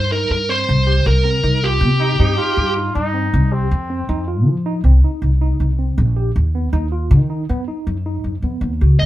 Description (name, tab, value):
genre	progressive instrumental, progressive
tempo	159 BPM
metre	7/4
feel	straight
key	unclear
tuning	A4 = 441 Hz
part	bluesy overdriven lead guitar	melody	0.0-2.7, 9.0-9.1 s	G4 to Eb5	-18 LUFS	right 2 dB	distortion
part	barky tine electric piano	arpeggios	0.0-9.0 s	B3 to G4	-27 LUFS	right 1 dB	overdrive, fast stereo tremolo
part	upright bass	bass	0.0-9.1 s	Bb1 to F3	-16 LUFS	equal	none
part	warm flugelhorn	second line	2.0-4.3 s	C4 to F4	-23 LUFS	left 1 dB	none
room	light reverb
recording	band playing live in one room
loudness	-15 LUFS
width	side -14 dB against mid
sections	0.0-9.1 A section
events	none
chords	0.0 Cm7; 3.7 F5; 6.4 B/D#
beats	0.31 0.68 | 1.06 1.44 1.82 2.19 2.57 2.95 3.33 | 3.71 4.09 4.46 4.84 5.22 5.60 5.98 | 6.36 6.73 7.11 7.49 7.87 8.24 8.62 | 9.00